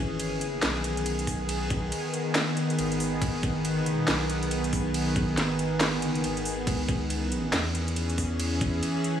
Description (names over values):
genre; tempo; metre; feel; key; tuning
deep dubstep; 139 BPM; 4/4; swing 61% on 16ths, half-time; G# minor; A4 = 440 Hz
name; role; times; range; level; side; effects
bowed-like drone; sustained chords; 0.0-9.2 s; D#3 to G#4; -28 LUFS; equal; built-in reverb, vintage 12-bit sampler grit
soft dub sub bass; bass; 0.0-8.8 s; G#1 to E2; -32 LUFS; equal; none
garage drum kit; drums; 0.2-9.1 s; handclaps, hi-hat, ride cymbal, snare drum; -31 LUFS; equal; none
electronic kick drum; drums; 1.3-8.7 s; none; -30 LUFS; equal; none
room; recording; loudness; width
moderate lush hall reverb, RT60 1.8 s; vinyl crackle, studio reverb; -25 LUFS; side -9 dB against mid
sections
0.0-9.2 A section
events
none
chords
0.0 G#m; 6.7 C#m